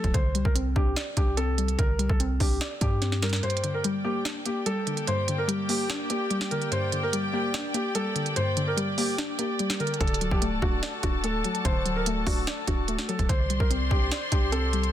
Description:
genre	hip hop, trap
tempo	146 BPM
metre	4/4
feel	half-time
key	G harmonic minor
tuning	A4 = 440 Hz
part	felt-muted upright piano	melody	0.0-14.9 s	F#4 to C5	-31 LUFS	equal	low-pass filter, digital delay
part	soft round pluck	accompaniment	0.0-14.9 s	G2 to D5	-30 LUFS	left 2 dB	chorus, low-pass filter
part	clean 808-style bass	bass	0.0-3.4, 10.0-14.9 s	C1 to G2	-28 LUFS	equal	none
part	trap drum kit	drums	0.0-14.9 s	hi-hat, kick drum, snare drum	-28 LUFS	right 1 dB	none
part	warm studio string section	sustained chords	3.4-14.9 s	Bb3 to C6	-33 LUFS	left 1 dB	none
room	digital ambience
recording	dense, heavily limited modern master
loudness	-24 LUFS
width	side -11 dB against mid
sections	0.0-14.9 A section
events	drum fill 3.0-3.4; kick muted 3.4-10.0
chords	0.1 Csus2; 3.4 Gm; 10.0 D; 13.3 Csus2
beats	| 0.14 0.55 0.96 1.38 | 1.79 2.20 2.61 3.02 | 3.43 3.84 4.25 4.66 | 5.08 5.49 5.90 6.31 | 6.72 7.13 7.54 7.95 | 8.36 8.77 9.18 9.60 | 10.01 10.42 10.83 11.24 | 11.65 12.06 12.47 12.88 | 13.29 13.71 14.12 14.53

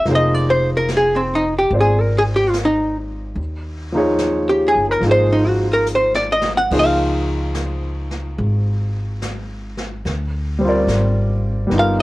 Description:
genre	jazz ballad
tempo	72 BPM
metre	4/4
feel	swing 68% on 8ths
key	unclear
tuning	A4 = 439 Hz
part	archtop guitar, miked and amplified	melody	0.0-12.0 s	C4 to F#5	-16 LUFS	equal	cassette tape
part	warm baby grand piano	accompaniment	0.0-12.0 s	F3 to D5	-21 LUFS	equal	cassette tape
part	upright bass	bass	0.1-12.0 s	F1 to Eb2	-21 LUFS	equal	none
part	jazz brush drum kit	drums	0.1-12.0 s	brushed snare drum, crash cymbal, hi-hat, kick drum, snare drum	-31 LUFS	equal	cassette tape
room	small room ambience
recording	home recording on cassette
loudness	-15 LUFS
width	side -18 dB against mid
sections	0.0-12.0 A section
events	hollow-body jazz guitar solo 0.0-12.0; drum fill 5.9-6.7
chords	0.1 Fm7; 3.4 Eb5; 5.0 Ab; 6.7 Dbmaj13; 10.1 Dm7b5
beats	| 0.06 0.89 1.72 2.55 | 3.38 4.21 5.04 5.88 | 6.72 7.56 8.39 9.22 | 10.05 10.89 11.71

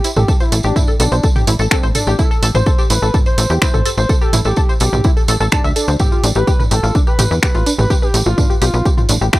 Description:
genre	melodic techno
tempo	126 BPM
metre	4/4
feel	straight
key	A minor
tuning	A4 = 440 Hz
part	expressive portamento lead	melody	0.0-9.4 s	C4 to C5	-23 LUFS	equal	chorus, sidechain pumping, analog delay
part	tight sequenced synth	arpeggios	0.0-9.4 s	D4 to A5	-21 LUFS	left 1 dB	chorus, sidechain pumping, tape echo
part	techno drum kit	drums	0.0-9.4 s	finger snaps, hi-hat, toms	-20 LUFS	equal	none
part	tambourine	percussion	0.0-9.4 s	none	-24 LUFS	right 3 dB	none
part	tight sequencer bass	bass	0.2-9.3 s	A1 to E2	-15 LUFS	equal	tube saturation, sidechain pumping
part	electronic kick drum	drums	0.3-9.4 s	none	-15 LUFS	equal	none
room	digital ambience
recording	dry, gritty hardware recording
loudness	-12 LUFS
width	side -18 dB against mid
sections	0.0-9.4 A section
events	none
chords	0.0 A5; 6.0 Gadd9/A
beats	| 0.28 0.76 1.24 1.71 | 2.19 2.67 3.14 3.62 | 4.09 4.57 5.05 5.52 | 6.00 6.47 6.95 7.43 | 7.90 8.38 8.86 9.33

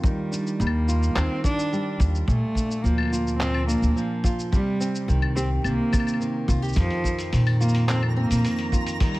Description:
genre	folktronica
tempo	107 BPM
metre	4/4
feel	straight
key	unclear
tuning	A4 = 441 Hz
part	warm cello	melody	0.0-9.2 s	F3 to D4	-27 LUFS	right 1 dB	ping-pong delay
part	nylon-string guitar	arpeggios	0.0-9.2 s	F2 to G4	-29 LUFS	equal	low-pass filter
part	kick drum	drums	0.0-9.1 s	none	-23 LUFS	equal	none
part	lo-fi sampler-style drum kit	drums	0.0-9.2 s	cabasa, claves, handclaps, hi-hat	-32 LUFS	left 2 dB	none
part	upright bass	bass	0.6-8.4 s	Bb1 to Bb2	-22 LUFS	equal	none
part	twinkling granular texture	texture	7.6-9.2 s	Bb5	-36 LUFS	right 2 dB	built-in reverb
room	small room ambience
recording	vinyl crackle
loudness	-21 LUFS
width	side -19 dB against mid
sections	0.0-9.2 A section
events	filter sweep on nylon-string guitar 0.0-9.2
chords	0.0 Ebmaj9; 2.3 Bbmaj7; 4.5 Cm7; 6.8 F7sus4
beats	| 0.04 0.60 1.16 1.72 | 2.28 2.84 3.40 3.96 | 4.52 5.08 5.64 6.21 | 6.77 7.33 7.89 8.45 | 9.01

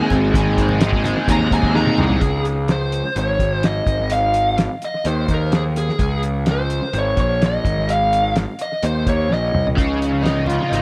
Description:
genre	psychedelic rock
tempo	127 BPM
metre	4/4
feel	straight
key	Ab major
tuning	A4 = 440 Hz
part	fuzz lead guitar	melody	0.0-9.6 s	Ab4 to Bb5	-24 LUFS	equal	distortion, analog delay
part	tonewheel organ	sustained chords	0.0-2.2, 9.8-10.8 s	F3 to Ab4	-33 LUFS	equal	none
part	overdriven electric guitar	riff	0.0-2.2, 9.8-10.8 s	Ab2 to Ab4	-22 LUFS	equal	rotary speaker, analog delay
part	fuzz picked electric bass	bass	0.1-10.8 s	Ab1 to Eb2	-23 LUFS	equal	overdrive
part	cloth-damped thuddy drum kit	drums	0.1-10.8 s	hi-hat, kick drum, snare drum, toms	-24 LUFS	equal	analog delay
part	congas	percussion	0.1-2.1, 10.2-10.6 s	none	-34 LUFS	equal	none
room	light reverb, studio ambience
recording	echo-heavy mix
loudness	-19 LUFS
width	mono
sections	0.0-2.2 A section; 2.2-10.8 B section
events	lead electric guitar solo 0.0-2.2; drum fill 1.7-2.2, 9.3-9.8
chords	0.0 Abadd9; 2.2 Db5; 3.9 Ab5; 6.0 Db5; 7.6 Ab5; 9.8 Dbadd9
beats	| 0.33 0.80 1.27 1.74 | 2.21 2.68 3.16 3.63 | 4.10 4.57 5.05 5.52 | 5.99 6.47 6.94 7.41 | 7.88 8.36 8.83 9.30 | 9.78 10.25 10.72

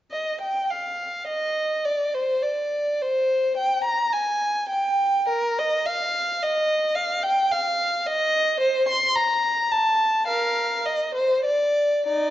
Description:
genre	classical, baroque-style suite movement for unaccompanied violin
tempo	106 BPM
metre	3/4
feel	rubato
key	Eb major from 7.0 s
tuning	A4 = 439 Hz
part	warm violin	solo	0.1-12.3 s	Eb4 to C6	-21 LUFS	equal	none
room	wet recital hall reverb, RT60 1.4 s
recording	dark, warm production, nothing above 7.6 kHz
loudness	-21 LUFS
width	side -13 dB against mid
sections	0.1-12.3 A section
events	none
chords	none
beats	| 0.13 0.71 1.28 | 1.85 2.42 3.00 | 3.57 4.13 4.69 | 5.27 5.85 6.41 | 6.96 7.50 8.05 | 8.61 9.17 9.73 | 10.29 10.87 11.46 | 12.07

